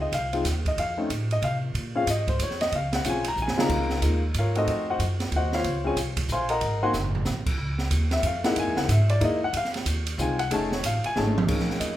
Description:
jazz piano trio; 185 BPM; 3/4; swing 63% on 8ths; A4 = 439 Hz
warm grand piano; melody; 0.0-12.0 s; Db3 to C6; -26 LUFS; left 2 dB
upright bass; bass; 0.0-12.0 s; F1 to C3; -27 LUFS; equal
open jazz drum kit; drums; 0.1-11.9 s; crash cymbal, hi-hat, kick drum, ride cymbal, snare drum, toms; -30 LUFS; right 2 dB
moderate large studio reverb, RT60 0.9 s; band playing live in one room; -23 LUFS; side -13 dB against mid
0.0-3.7 A section; 3.7-11.5 A section
grand piano solo 0.0-11.5; drum fill 3.4-3.7, 6.9-7.3, 11.2-11.5
0.0 Dbmaj9; 0.8 F7; 1.8 Bbm9; 3.7 Db69; 4.7 F7b9; 5.6 Bbm9; 6.6 Ab9; 7.6 Dbadd9; 8.6 Gb13; 9.5 Fm7; 10.5 F7alt

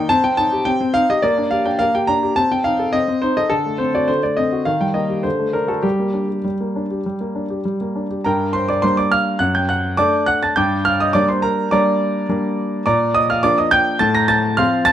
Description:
classical-period piano sonatina; 104 BPM; 4/4; rubato; G minor; A4 = 438 Hz
clear grand piano; solo; 0.0-14.9 s; F#2 to Bb6; -16 LUFS; equal
light reverb; dark, warm production; -16 LUFS; side -11 dB against mid
0.0-8.3 A section; 8.3-14.9 A section
0.1 Cm; 1.2 Gm/Bb; 2.4 Adim/C; 3.5 D7; 4.7 Eb; 5.3 D7; 5.8 Gm; 9.4 D/F#; 10.6 Gm; 12.9 Bb; 14.0 F/A

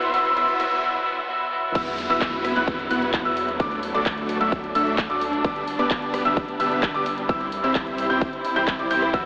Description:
EDM, festival progressive house; 130 BPM; 4/4; straight; A4 = 440 Hz
electric guitar at the edge of break-up; accompaniment; 0.0-1.7, 9.1-9.3 s; F#3 to F#4; -32 LUFS; equal; sidechain pumping, analog delay
warm studio string section; sustained chords; 0.0-9.3 s; F#3 to C6; -28 LUFS; equal; sidechain pumping
bright baby grand piano; arpeggios; 0.0-9.3 s; D6 to G6; -24 LUFS; equal; sidechain pumping, analog delay
dense compressed supersaw; riff; 0.0-9.3 s; A3 to G5; -27 LUFS; equal; sidechain pumping, analog delay
saturated sub bass; bass; 0.0-9.3 s; G1 to E2; -38 LUFS; equal; sidechain pumping
big-room dance drum kit; drums; 0.0-9.2 s; crash cymbal, handclaps, hi-hat, ride cymbal, rim click; -31 LUFS; equal; overdrive, studio reverb
riser and downlifter; sound effects; 0.0-5.4 s; -37 LUFS; equal
electronic kick drum; drums; 1.8-9.2 s; -26 LUFS; equal; overdrive, studio reverb
wet huge ambient reverb, RT60 8.2 s; dreamy mix soaked in reverb, high-pass filter, AM radio sound; -20 LUFS; side -36 dB against mid
0.0-1.8 A section; 1.8-9.3 B section
build-up 0.0-1.8; riser 0.0-0.8; break 0.8-1.8; drop 1.8-9.3
0.0 C; 0.8 F#7sus4; 1.8 Esus2; 3.6 D; 5.4 G; 7.3 C

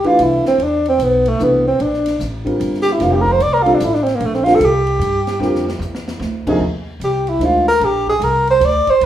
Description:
modal jazz; 150 BPM; 3/4; swing 64% on 8ths; A4 = 443 Hz
breathy tenor saxophone; melody; 0.0-9.1 s; A3 to D5; -14 LUFS; right 1 dB
dark grand piano; accompaniment; 0.0-7.6 s; D2 to C5; -18 LUFS; equal
upright bass; bass; 0.0-9.1 s; F1 to G2; -22 LUFS; right 1 dB
swinging big-band drum kit; drums; 0.0-9.1 s; crash cymbal, hi-hat, kick drum, ride cymbal, snare drum, toms; -32 LUFS; equal
moderate digital room reverb, RT60 1.0 s; rough home demo mix, small room ambience; -13 LUFS; side -11 dB against mid
0.0-6.6 A section; 6.6-9.1 A section
tenor saxophone solo 0.0-9.1; drum fill 5.4-6.2
0.0 Cmaj9; 1.8 Bbmaj9; 6.6 Ebmaj7

